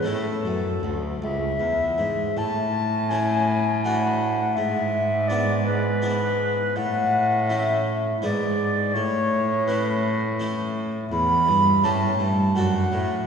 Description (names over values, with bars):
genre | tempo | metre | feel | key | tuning
classical, baroque-style sonata movement with continuo | 82 BPM | 3/4 | straight | A major | A4 = 440 Hz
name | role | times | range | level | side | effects
bright baroque flute | melody | 0.0-13.3 s | A4 to B5 | -24 LUFS | left 1 dB | none
harpsichord | accompaniment | 0.0-13.3 s | C#2 to G4 | -29 LUFS | equal | none
warm cello | bass | 0.0-13.3 s | C#2 to A2 | -25 LUFS | right 1 dB | none
room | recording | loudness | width
wet concert hall reverb, RT60 2.3 s | heard from further back in the room | -20 LUFS | side -6 dB against mid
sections
0.0-2.4 A section; 2.4-13.3 B section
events
none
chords
0.1 A; 3.8 D/A; 4.6 E7/G#; 6.8 A; 8.2 E/G#; 8.9 A; 11.1 A7/E; 12.6 D/F#